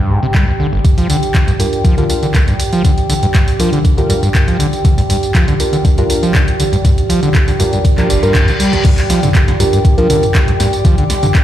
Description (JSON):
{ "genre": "acid house", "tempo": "120 BPM", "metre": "4/4", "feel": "straight", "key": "G minor", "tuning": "A4 = 438 Hz", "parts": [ { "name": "overdriven acid bass", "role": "riff", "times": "0.0-11.4 s", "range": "G1 to G3", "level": "-16 LUFS", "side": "equal", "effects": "distortion, sidechain pumping, analog delay" }, { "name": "warbly tape-like pad", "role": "texture", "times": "0.0-11.4 s", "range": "G4 to G5", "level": "-20 LUFS", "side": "right 3 dB", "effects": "chorus, built-in reverb, sidechain pumping" }, { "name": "electronic kick drum", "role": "drums", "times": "0.3-11.4 s", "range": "none", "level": "-12 LUFS", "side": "equal", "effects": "overdrive" }, { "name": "punchy analog drum machine", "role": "drums", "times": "0.3-11.4 s", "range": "crash cymbal, handclaps, hi-hat, snare drum, tambourine, toms", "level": "-20 LUFS", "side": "equal", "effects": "none" }, { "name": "deep mellow chord stab", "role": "stabs", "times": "1.6-10.2 s", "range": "D4 to D5", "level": "-20 LUFS", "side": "left 1 dB", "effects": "chorus, cassette tape, analog delay" }, { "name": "reverse cymbal", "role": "sound effects", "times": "8.1-8.8 s", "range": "none", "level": "-23 LUFS", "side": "left 3 dB", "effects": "none" } ], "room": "moderate spring reverb, RT60 1.3 s", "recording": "played on a big sound system in a bare room, large studio reverb", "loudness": "-10 LUFS", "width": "side -12 dB against mid", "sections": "0.0-8.8 A section; 8.8-11.4 B section", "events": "reverse cymbal 8.1-8.8; band accent 8.3; drop 8.8-11.4", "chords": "0.0 Gm7" }